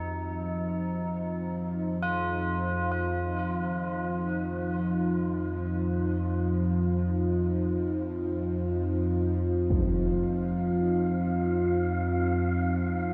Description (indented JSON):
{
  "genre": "dark ambient drone",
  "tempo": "free time",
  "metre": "none",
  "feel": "none",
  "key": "unclear",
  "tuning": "A4 = 443 Hz",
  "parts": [
    { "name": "deep dark ambient pad", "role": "sustained chords", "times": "0.0-13.1 s", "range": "Eb4 to C5", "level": "-37 LUFS", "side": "equal", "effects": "chorus, built-in reverb" },
    { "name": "tubular bells", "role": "arpeggios", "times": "0.0-13.1 s", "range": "Eb4 to F4", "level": "-38 LUFS", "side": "equal", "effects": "diffuse ambient delay" },
    { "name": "overtone-sweeping drone", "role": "drone", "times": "0.0-13.1 s", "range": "F2 to F3", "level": "-30 LUFS", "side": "equal", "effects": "chorus, built-in reverb" },
    { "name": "impact", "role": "percussion", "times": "9.7-9.9 s", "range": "none", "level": "-33 LUFS", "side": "equal", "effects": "low-pass filter on sfx" },
    { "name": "wind-like tuned noise texture", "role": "texture", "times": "10.1-13.1 s", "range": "F5", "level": "-39 LUFS", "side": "equal", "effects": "built-in reverb" }
  ],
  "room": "moderate huge ambient reverb, RT60 8.3 s",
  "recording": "dark, warm production",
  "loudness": "-29 LUFS",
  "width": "mono",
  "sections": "0.0-13.1 A section",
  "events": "fade-out on ambient pad 0.0-13.1; fade-out on tubular bells 0.0-13.1",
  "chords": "0.0 F5",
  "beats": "free time"
}